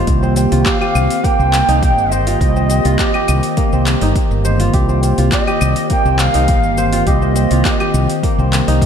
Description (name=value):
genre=organic downtempo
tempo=103 BPM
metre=4/4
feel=straight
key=C minor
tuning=A4 = 440 Hz
part: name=warbly tape-like pad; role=sustained chords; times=0.0-8.9 s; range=Eb3 to C5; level=-20 LUFS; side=right 1 dB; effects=chorus, built-in reverb, sidechain pumping
part: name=kora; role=arpeggios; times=0.0-8.9 s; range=Bb3 to C5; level=-20 LUFS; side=equal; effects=analog delay
part: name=mellow fretless electric bass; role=bass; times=0.0-8.9 s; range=G1 to C2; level=-15 LUFS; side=equal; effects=sidechain pumping
part: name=deep house drum kit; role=drums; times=0.1-8.9 s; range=claves, handclaps, hi-hat, shaker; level=-23 LUFS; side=left 1 dB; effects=overdrive
part: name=electronic kick drum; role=drums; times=0.1-8.9 s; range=none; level=-17 LUFS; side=equal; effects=overdrive
part: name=reedy bansuri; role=melody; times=0.6-8.2 s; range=Eb5 to G5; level=-20 LUFS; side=right 1 dB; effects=ping-pong delay
room=moderate lush hall reverb, RT60 2.5 s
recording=dreamy mix soaked in reverb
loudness=-12 LUFS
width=side -8 dB against mid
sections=0.0-8.9 A section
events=none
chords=0.0 Cm7